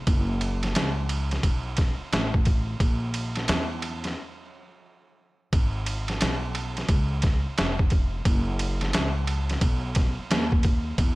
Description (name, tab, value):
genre	hip hop, jazz-hop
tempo	88 BPM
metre	4/4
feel	swing 64% on 16ths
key	unclear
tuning	A4 = 441 Hz
part	upright bass	bass	0.0-11.2 s	F1 to Fb2	-28 LUFS	equal	none
part	trip hop sampler-style drum kit	drums	0.1-11.2 s	hi-hat, kick drum, ride cymbal, snare drum	-24 LUFS	equal	none
room	digital ambience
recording	none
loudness	-23 LUFS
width	side -20 dB against mid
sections	0.0-11.2 A section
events	break 4.2-5.5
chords	none